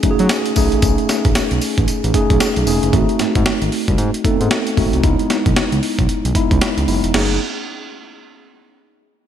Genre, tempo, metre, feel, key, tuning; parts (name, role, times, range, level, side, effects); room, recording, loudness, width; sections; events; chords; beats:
R&B, new jack swing; 114 BPM; 4/4; swing 61% on 16ths; F# dorian; A4 = 441 Hz
mellow tine electric piano; accompaniment; 0.0-7.4 s; G#3 to A4; -18 LUFS; equal; medium stereo tremolo
smooth synth bass; bass; 0.0-7.4 s; E1 to F#3; -19 LUFS; equal
breakbeat sampler-style drum kit; drums; 0.0-7.3 s; crash cymbal, hi-hat, kick drum, snare drum, tambourine; -18 LUFS; equal
moderate lush hall reverb, RT60 2.6 s; bright 1980s-style digital production; -14 LUFS; side -9 dB against mid
0.0-7.1 A section; 7.1-9.2 B section
0.0 F#m69; 0.6 B13; 2.9 G#7b9; 5.0 C#m7; 7.1 F#m69
0.30 | 0.82 1.35 1.88 2.40 | 2.93 3.46 3.98 4.51 | 5.04 5.56 6.09 6.61 | 7.14